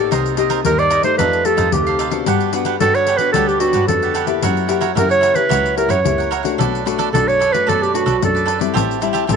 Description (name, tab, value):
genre	samba and choro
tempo	111 BPM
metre	4/4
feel	straight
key	unclear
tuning	A4 = 440 Hz
part	cavaquinho	accompaniment	0.0-9.4 s	D4 to A5	-22 LUFS	right 12 dB	none
part	nylon-string guitar	accompaniment	0.0-9.4 s	F#2 to G4	-21 LUFS	left 13 dB	none
part	muted double bass	bass	0.0-9.4 s	A1 to G2	-23 LUFS	equal	none
part	pandeiro	percussion	0.1-9.4 s	none	-25 LUFS	left 12 dB	none
part	clear clarinet	melody	0.7-9.4 s	F#4 to D5	-17 LUFS	right 3 dB	none
room	moderate plate reverb, RT60 3.5 s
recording	1960s-style stereo with parts hard left and right, nothing above 10.4 kHz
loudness	-14 LUFS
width	side -6 dB against mid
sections	0.0-9.4 A section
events	none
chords	0.1 Cm7; 1.2 F9; 2.3 Gmaj7; 4.4 F#7b9; 6.6 Bm7; 8.8 Am7